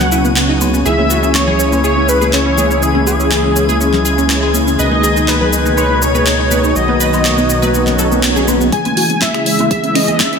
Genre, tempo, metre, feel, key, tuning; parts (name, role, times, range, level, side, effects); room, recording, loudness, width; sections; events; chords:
progressive house; 122 BPM; 4/4; straight; C# minor; A4 = 440 Hz
wide unison lead; melody; 0.0-10.4 s; G#4 to G#5; -17 LUFS; left 1 dB; analog chorus, ping-pong delay
filtered supersaw swell; sustained chords; 0.0-10.4 s; B2 to G#4; -18 LUFS; right 1 dB; sidechain pumping, low-pass filter
wide unison pluck; arpeggios; 0.0-10.4 s; B3 to C#5; -18 LUFS; equal; phaser, sidechain pumping, diffuse ambient delay
round analog bass; bass; 0.0-8.7 s; B1 to C#2; -19 LUFS; equal; sidechain pumping
deep house drum kit; drums; 0.0-10.4 s; finger snaps, handclaps, hi-hat, shaker; -19 LUFS; equal; small room ambience
congas and woodblock; percussion; 0.0-10.3 s; -22 LUFS; left 4 dB; sidechain pumping on perc
drifting glass-harmonics texture; texture; 0.0-10.4 s; G#5 to B6; -26 LUFS; left 4 dB; chorus, built-in reverb, sidechain pumping
swell and riser; sound effects; 7.9-10.4 s; -23 LUFS; right 2 dB
soft synth bell; second line; 8.7-10.4 s; D#5 to G#5; -23 LUFS; left 3 dB; chorus, phaser, sidechain pumping, diffuse ambient delay
electronic kick drum; drums; 8.7-10.3 s; -21 LUFS; equal; high-pass filter on kick, small room ambience
wet plate reverb, RT60 2.1 s; dreamy mix soaked in reverb; -11 LUFS; side -6 dB against mid
0.0-8.7 A section; 8.7-10.4 B section
swell 7.9-8.7; build-up 8.7-10.4; filter sweep on synth pluck 8.7-10.4; filter sweep on supersaw synth 8.7-10.4
0.0 Bsus2/C#; 0.9 C#m; 4.8 G#m/C#; 6.8 B; 8.7 C#m